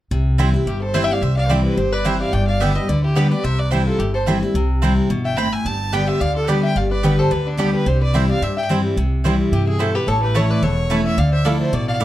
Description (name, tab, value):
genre	bluegrass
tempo	217 BPM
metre	4/4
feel	swing 54% on 8ths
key	C major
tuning	A4 = 440 Hz
part	picked steel-string acoustic guitar	accompaniment	0.1-12.0 s	E2 to G4	-19 LUFS	left 1 dB	none
part	upright bass	bass	0.1-12.0 s	E1 to G2	-21 LUFS	equal	none
part	mandolin	stabs	0.4-12.0 s	A3 to D6	-25 LUFS	right 6 dB	none
part	clear fiddle	melody	0.7-12.0 s	D4 to B5	-25 LUFS	right 1 dB	none
part	lap resonator guitar	second line	0.7-12.0 s	B3 to G5	-26 LUFS	left 2 dB	none
room	light reverb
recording	dark, warm production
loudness	-16 LUFS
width	side -14 dB against mid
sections	0.1-9.0 A section; 9.0-12.0 B section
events	none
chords	0.1 C; 2.3 G; 3.4 C; 5.7 G; 7.9 C; 10.1 A; 11.2 Dmadd9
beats	| 0.12 0.39 0.67 0.95 | 1.22 1.50 1.78 2.06 | 2.33 2.61 2.89 3.16 | 3.44 3.72 3.99 4.27 | 4.55 4.83 5.10 5.38 | 5.66 5.93 6.21 6.49 | 6.76 7.04 7.31 7.59 | 7.87 8.14 8.42 8.70 | 8.97 9.25 9.52 9.80 | 10.07 10.35 10.63 10.90 | 11.18 11.45 11.73 12.00